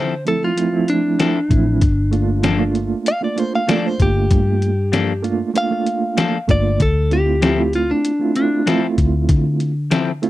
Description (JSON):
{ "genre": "straight-eighth soul blues", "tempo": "96 BPM", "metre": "4/4", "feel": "straight", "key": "D minor", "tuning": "A4 = 440 Hz", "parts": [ { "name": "direct-recorded clean electric guitar", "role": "melody", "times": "0.0-8.7 s", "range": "D4 to F5", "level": "-20 LUFS", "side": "left 1 dB", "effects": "none" }, { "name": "clean electric guitar", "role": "stabs", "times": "0.0-10.1 s", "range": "F3 to A4", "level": "-20 LUFS", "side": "left 6 dB", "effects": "none" }, { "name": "vintage muted fingered electric bass", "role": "bass", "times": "0.0-10.3 s", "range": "G1 to D3", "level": "-19 LUFS", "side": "left 1 dB", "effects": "none" }, { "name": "mellow reed electric piano", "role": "accompaniment", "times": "0.2-10.3 s", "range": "F3 to F4", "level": "-20 LUFS", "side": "right 5 dB", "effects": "fast tremolo" }, { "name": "trip hop sampler-style drum kit", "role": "drums", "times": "0.3-10.3 s", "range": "hi-hat, kick drum, snare drum", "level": "-19 LUFS", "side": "left 1 dB", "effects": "none" } ], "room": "little or no reverb", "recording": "dry, close 1970s-style studio recording", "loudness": "-15 LUFS", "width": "side -15 dB against mid", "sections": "0.0-10.3 A section", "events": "none", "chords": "0.0 Dm9; 1.8 Gm9; 6.8 Dm9" }